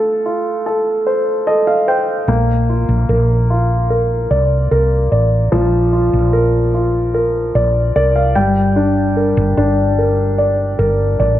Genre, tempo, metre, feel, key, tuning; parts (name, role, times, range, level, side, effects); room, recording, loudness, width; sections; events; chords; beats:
pop; 74 BPM; 4/4; straight; Bb major; A4 = 438 Hz
warm grand piano; accompaniment; 0.0-11.4 s; F3 to G5; -15 LUFS; equal
woody fretless electric bass; bass; 2.3-11.4 s; G1 to C2; -16 LUFS; equal
moderate lush hall reverb, RT60 2.4 s; -13 LUFS; side -12 dB against mid
0.0-11.4 A section
grand piano fill 1.1-2.3, 7.5-8.8
0.0 F/A; 2.3 Bbadd9; 8.4 Gm
0.66 1.47 | 2.28 3.09 3.90 4.71 | 5.52 6.33 7.14 7.95 | 8.76 9.57 10.39 11.20